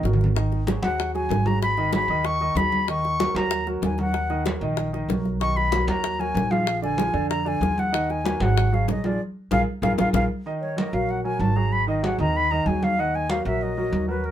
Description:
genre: Afro-Cuban jazz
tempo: 190 BPM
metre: 4/4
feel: straight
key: Eb minor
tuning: A4 = 440 Hz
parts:
  - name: warm upright piano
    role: accompaniment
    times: 0.0-14.3 s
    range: D3 to Eb5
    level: -27 LUFS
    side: right 1 dB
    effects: none
  - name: upright bass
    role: bass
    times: 0.0-14.3 s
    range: Ab1 to F2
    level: -26 LUFS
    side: right 1 dB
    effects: none
  - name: bongos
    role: percussion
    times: 0.1-10.2 s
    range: none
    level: -30 LUFS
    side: left 7 dB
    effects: none
  - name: congas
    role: percussion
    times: 0.1-14.3 s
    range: none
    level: -28 LUFS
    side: right 1 dB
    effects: none
  - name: concert flute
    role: melody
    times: 0.8-14.3 s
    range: Bb4 to Db6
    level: -25 LUFS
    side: left 2 dB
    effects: none
room: light reverb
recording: minimal, uncompressed stereo recording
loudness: -21 LUFS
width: side -11 dB against mid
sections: 0.0-10.5 A section; 10.5-14.3 B section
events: drum fill 0.0-0.4, 9.8-10.5; band accent 9.2-10.5; flute solo 10.5-14.3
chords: 0.4 Abm7; 2.9 Ebm; 5.4 Bmaj7; 6.7 Bb7; 7.9 Ebm; 8.6 Bb7b13/Ab; 9.2 Bb5; 10.5 Ebm; 11.7 Ab5; 13.0 Ebm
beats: 0.04 | 0.35 0.67 0.98 1.30 | 1.62 1.93 2.25 2.56 | 2.88 3.20 3.51 3.83 | 4.14 4.46 4.78 5.09 | 5.41 5.72 6.04 6.35 | 6.67 6.99 7.30 7.62 | 7.93 8.25 8.56 8.88 | 9.20 9.51 9.83 10.14 | 10.46 10.77 11.09 11.40 | 11.72 12.03 12.35 12.66 | 12.98 13.30 13.61 13.93 | 14.24

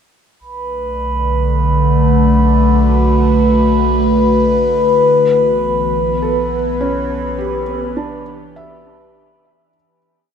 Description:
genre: ambient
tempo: 52 BPM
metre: 4/4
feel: straight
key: B minor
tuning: A4 = 440 Hz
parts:
  - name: evolving wavetable pad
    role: sustained chords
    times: 1.2-9.8 s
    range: D3 to B4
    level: -14 LUFS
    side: left 2 dB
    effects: phaser, built-in reverb
  - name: round analog bass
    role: bass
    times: 0.4-9.7 s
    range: B1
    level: -18 LUFS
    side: equal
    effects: none
  - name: glass harmonica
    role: texture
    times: 0.4-9.8 s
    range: B4 to B5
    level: -20 LUFS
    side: right 3 dB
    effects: stereo widening
  - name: felt-muted upright piano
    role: arpeggios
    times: 6.2-10.3 s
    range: C#4 to E5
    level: -25 LUFS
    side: right 1 dB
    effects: tape echo
room: moderate huge ambient reverb, RT60 9.4 s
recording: in a vast, echoing space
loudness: -12 LUFS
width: side -7 dB against mid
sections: 0.4-9.7 A section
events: fade-in on felt piano 0.4-9.7; fade-out on analog synth bass 0.4-9.7; filter sweep on ambient pad 0.4-9.7; fade-out 5.1-9.7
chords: 0.4 Bm7; 5.1 Em/B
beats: | 0.40 1.58 2.74 3.90 | 5.06 6.22 7.38 8.56

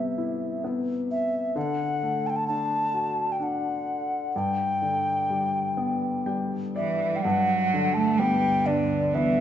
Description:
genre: celtic folk, Celtic slow air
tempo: 60-66 BPM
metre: 3/4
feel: rubato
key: G major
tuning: A4 = 440 Hz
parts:
  - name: alto ocarina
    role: melody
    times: 0.0-9.4 s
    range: D5 to A5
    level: -26 LUFS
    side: left 1 dB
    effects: none
  - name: warm upright piano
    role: accompaniment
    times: 0.0-9.4 s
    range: G2 to G5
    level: -28 LUFS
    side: left 2 dB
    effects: none
  - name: clear cello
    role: second line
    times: 6.8-9.4 s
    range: D3 to A3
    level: -27 LUFS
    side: right 5 dB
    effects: none
  - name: deep dark ambient pad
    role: sustained chords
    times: 8.3-9.4 s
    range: G2 to B3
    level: -31 LUFS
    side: equal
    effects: chorus, built-in reverb, tremolo
room: wet recital hall reverb, RT60 1.4 s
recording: recorded in a church or concert hall, nothing above 7.7 kHz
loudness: -23 LUFS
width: side -10 dB against mid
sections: 0.0-7.2 A section; 7.2-9.4 A section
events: upright piano fill 5.8-7.2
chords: 0.0 Cmaj7; 1.6 D; 4.3 G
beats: 0.63 | 1.56 2.47 3.39 | 4.33 5.29 6.27 | 7.25 8.20 9.14

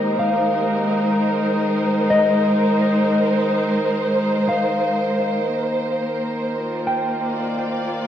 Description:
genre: ambient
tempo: 63 BPM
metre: 4/4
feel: straight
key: unclear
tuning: A4 = 440 Hz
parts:
  - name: dark studio string section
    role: sustained chords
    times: 0.0-8.1 s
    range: Ab3 to D5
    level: -19 LUFS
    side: right 1 dB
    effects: none
  - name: mellow electric guitar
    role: arpeggios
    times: 0.0-8.1 s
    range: Eb5 to G5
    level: -24 LUFS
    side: left 3 dB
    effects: tape echo
  - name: pedal harmonium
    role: drone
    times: 0.0-8.1 s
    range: Eb3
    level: -28 LUFS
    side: left 2 dB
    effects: none
room: wet spring reverb, RT60 2.7 s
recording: echo-heavy mix, cassette tape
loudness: -17 LUFS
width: side -10 dB against mid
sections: 0.0-8.1 A section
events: fade-out 2.9-8.1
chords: 0.0 Ab69; 5.4 Bbadd9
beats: 0.67 | 1.62 2.58 3.53 4.48 | 5.43 6.39 7.34

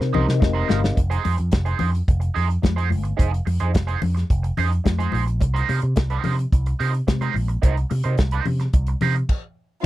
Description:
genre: disco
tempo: 108 BPM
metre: 4/4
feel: straight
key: F minor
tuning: A4 = 440 Hz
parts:
  - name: electric guitar at the edge of break-up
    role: accompaniment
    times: 0.0-9.2 s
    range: Eb4 to C5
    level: -27 LUFS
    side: right 9 dB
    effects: wah
  - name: mellow tine electric piano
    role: accompaniment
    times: 0.0-1.0, 9.8-9.9 s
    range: C3 to F5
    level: -24 LUFS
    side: left 6 dB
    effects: medium stereo tremolo
  - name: picked electric bass with an envelope filter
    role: bass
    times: 0.0-9.2 s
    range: F1 to C3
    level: -21 LUFS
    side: equal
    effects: none
  - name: warm soul drum kit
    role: drums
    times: 0.0-9.4 s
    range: crash cymbal, hi-hat, kick drum, snare drum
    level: -19 LUFS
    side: equal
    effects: none
  - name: congas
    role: percussion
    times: 0.1-9.1 s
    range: none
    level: -29 LUFS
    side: left 6 dB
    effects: none
room: little or no reverb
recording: none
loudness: -19 LUFS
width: side -16 dB against mid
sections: 1.0-9.8 A section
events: tine electric piano fill 0.0-1.0; drum fill 0.0-1.0; stop 9.3-9.8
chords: 0.0 Fm7; 5.4 Cm7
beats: 0.42 | 0.97 1.53 2.08 2.64 | 3.19 3.75 4.30 4.86 | 5.41 5.97 6.52 7.08 | 7.63 8.18 8.74 9.29 | 9.84

